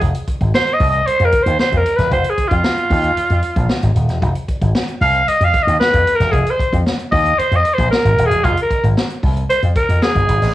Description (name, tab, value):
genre	funk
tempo	114 BPM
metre	4/4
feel	straight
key	unclear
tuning	A4 = 440 Hz
part	slap bass with an envelope filter	bass	0.0-10.5 s	Eb1 to F2	-16 LUFS	equal	transformer saturation
part	swinging big-band drum kit	drums	0.0-10.5 s	hi-hat, kick drum, snare drum	-20 LUFS	equal	cassette tape
part	growling alto saxophone	melody	0.5-10.5 s	F4 to F5	-15 LUFS	equal	cassette tape, plate reverb
room	light reverb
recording	home recording on cassette, studio reverb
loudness	-13 LUFS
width	side -14 dB against mid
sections	0.0-10.5 A section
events	alto saxophone solo 0.0-10.5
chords	0.0 Fm7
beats	| 0.01 0.54 1.06 1.59 | 2.12 2.64 3.17 3.69 | 4.22 4.75 5.28 5.80 | 6.33 6.86 7.38 7.91 | 8.44 8.97 9.49 10.02